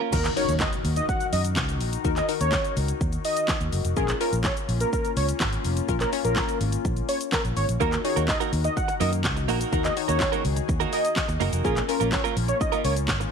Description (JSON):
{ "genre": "dance-pop", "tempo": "125 BPM", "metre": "4/4", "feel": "straight", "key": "Eb minor", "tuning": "A4 = 439 Hz", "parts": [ { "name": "warm analog pad", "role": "sustained chords", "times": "0.0-13.3 s", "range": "Eb3 to Bb4", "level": "-33 LUFS", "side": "left 10 dB", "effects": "wide subtle chorus, sidechain pumping" }, { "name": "direct-recorded clean electric guitar", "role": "riff", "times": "0.0-0.2, 7.8-13.2 s", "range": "Bb3 to Bb4", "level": "-29 LUFS", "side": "right 14 dB", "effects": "analog chorus" }, { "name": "wide unison lead", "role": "melody", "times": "0.1-12.9 s", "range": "Ab4 to Gb5", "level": "-28 LUFS", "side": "right 1 dB", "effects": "sidechain pumping, tape echo" }, { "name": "analog pluck", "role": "accompaniment", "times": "0.1-12.6 s", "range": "Db4 to Db5", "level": "-31 LUFS", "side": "left 13 dB", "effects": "chorus, sidechain pumping" }, { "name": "vintage muted fingered electric bass", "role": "bass", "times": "0.1-13.2 s", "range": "F1 to Gb2", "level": "-26 LUFS", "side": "equal", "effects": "sidechain pumping" }, { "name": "pop drum kit", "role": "drums", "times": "0.1-13.3 s", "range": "crash cymbal, handclaps, hi-hat, kick drum, shaker, snare drum", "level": "-28 LUFS", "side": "equal", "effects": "none" }, { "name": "impact", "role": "sound effects", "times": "0.1-2.0 s", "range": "none", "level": "-38 LUFS", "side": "right 1 dB", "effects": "none" } ], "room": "light reverb", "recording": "1960s-style stereo with parts hard left and right", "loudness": "-22 LUFS", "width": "side -6 dB against mid", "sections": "0.1-13.3 A section", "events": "drop 0.1-13.3; impact 0.1-2.0", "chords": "0.1 Ebm; 4.0 Bbm; 7.8 Ebm; 11.6 Bbm" }